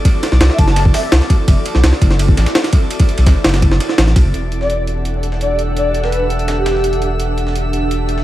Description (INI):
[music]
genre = drum and bass, jungle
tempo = 168 BPM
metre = 4/4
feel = straight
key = E minor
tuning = A4 = 439 Hz
[part]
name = ethereal airy pad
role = sustained chords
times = 0.0-8.2 s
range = D4 to F#5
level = -22 LUFS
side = right 1 dB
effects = ensemble chorus, built-in reverb, tremolo
[part]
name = drifting glass-harmonics texture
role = texture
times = 0.0-8.2 s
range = D5 to E6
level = -28 LUFS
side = equal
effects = chorus, built-in reverb
[part]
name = breakbeat sampler-style drum kit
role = drums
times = 0.1-8.2 s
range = hi-hat, snare drum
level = -28 LUFS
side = right 1 dB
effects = high-pass filter on hats, studio reverb, high-pass filter on snare, high-pass filter on room
[part]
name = jungle sampler-style drum kit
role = drums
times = 0.1-4.2 s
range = hi-hat, kick drum, ride cymbal, snare drum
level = -13 LUFS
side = equal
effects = overdrive, studio reverb
[part]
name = saturated sub bass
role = bass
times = 0.3-8.2 s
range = E1 to C2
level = -15 LUFS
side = equal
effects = tube saturation
[part]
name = breathy flute-like synth lead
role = melody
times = 0.5-1.1, 4.6-7.1 s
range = G4 to A5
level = -22 LUFS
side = equal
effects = ensemble chorus, dub echo
[sound]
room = digital ambience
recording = vinyl crackle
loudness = -12 LUFS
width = side -14 dB against mid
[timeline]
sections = 0.0-4.3 A section; 4.3-8.2 B section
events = drop 0.0-4.3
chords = 0.0 F#m7b5; 4.3 Em11